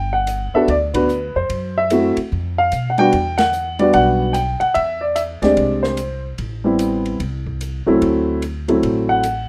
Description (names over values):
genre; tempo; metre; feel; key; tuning
jazz piano trio; 147 BPM; 4/4; swing 64% on 8ths; unclear; A4 = 441 Hz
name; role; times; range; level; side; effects
warm baby grand piano; melody; 0.0-9.5 s; F#3 to G5; -18 LUFS; equal; none
upright bass; bass; 0.0-9.5 s; G1 to B2; -27 LUFS; equal; none
open jazz drum kit; drums; 0.3-9.4 s; hi-hat, kick drum, ride cymbal, snare drum; -33 LUFS; equal; none
room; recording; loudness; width
small room ambience; rough home demo mix; -18 LUFS; mono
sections
0.0-9.5 A section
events
band accent 0.9, 3.3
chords
0.0 Gmaj7; 1.5 F#m7b5; 2.3 Fsus2; 3.1 Em9; 4.8 E7alt; 6.4 Am9; 8.0 D9